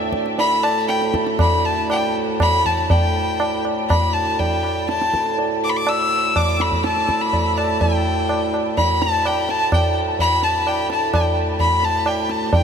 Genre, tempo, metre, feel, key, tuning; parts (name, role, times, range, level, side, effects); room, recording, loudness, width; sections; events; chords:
indian classical, Hindustani; 118-130 BPM; 5/4; straight; D raga durga; A4 = 440 Hz
hand-pumped harmonium; drone; 0.0-12.6 s; D2 to A2; -25 LUFS; right 3 dB; stereo widening
tabla; percussion; 0.1-12.6 s; -21 LUFS; right 1 dB
clear violin; melody; 0.4-12.6 s; G5 to E6; -19 LUFS; left 2 dB; tape echo
wet huge ambient reverb, RT60 7.2 s; dreamy mix soaked in reverb; -16 LUFS; side -7 dB against mid
0.0-2.9 A section; 2.9-12.5 B section
speeding up 0.0-12.6